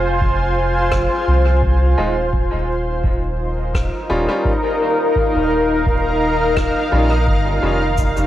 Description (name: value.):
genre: ambient dub.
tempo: 85 BPM.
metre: 4/4.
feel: swing 55% on 16ths.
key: unclear.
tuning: A4 = 441 Hz.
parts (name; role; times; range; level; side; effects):
granular cloud pad; sustained chords; 0.0-8.3 s; Eb4 to Ab5; -18 LUFS; equal; built-in reverb.
soft dub sub bass; bass; 0.0-8.3 s; Eb1 to C2; -19 LUFS; equal; none.
electronic kick drum; drums; 0.2-8.1 s; none; -21 LUFS; equal; cassette tape.
rim click and cabasa; drums; 0.9-8.3 s; none; -30 LUFS; left 1 dB; cassette tape, dub echo.
bright upright piano; stabs; 2.0-7.8 s; G3 to F4; -25 LUFS; equal; dub echo.
room: moderate studio reverb, RT60 0.6 s.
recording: home recording on cassette, vinyl crackle.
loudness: -15 LUFS.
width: side -13 dB against mid.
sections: 0.0-8.3 A section.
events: none.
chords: 0.0 Fm7; 2.3 Eb9.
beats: 0.21 0.92 1.63 | 2.33 3.04 3.74 4.45 | 5.16 5.86 6.57 7.27 | 7.98.